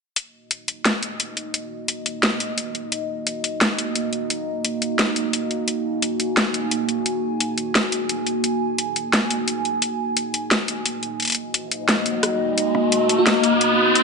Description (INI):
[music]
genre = half-time drum and bass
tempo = 174 BPM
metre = 4/4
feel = half-time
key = Eb minor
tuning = A4 = 441 Hz
[part]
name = dark analog pad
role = sustained chords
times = 1.1-14.0 s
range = Bb3 to Ab5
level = -23 LUFS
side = equal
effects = chorus, phaser, vintage 12-bit sampler grit
[part]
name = drum and bass drum kit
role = drums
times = 0.2-14.0 s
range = hi-hat, rim click, snare drum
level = -21 LUFS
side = left 1 dB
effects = overdrive
[part]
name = riser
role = sound effects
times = 12.1-14.0 s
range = none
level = -21 LUFS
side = equal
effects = none
[part]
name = bell-like FM electric piano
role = melody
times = 13.2-13.4 s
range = Gb4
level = -24 LUFS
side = right 1 dB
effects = chorus, digital delay
[sound]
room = wet echo chamber reverb, RT60 1.9 s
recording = nothing above 10.3 kHz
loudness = -20 LUFS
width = side -4 dB against mid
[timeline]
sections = 0.2-11.2 A section; 11.2-14.0 B section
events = build-up 11.2-14.0; filter sweep 11.2-14.0; riser 12.1-14.0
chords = 0.2 Ebm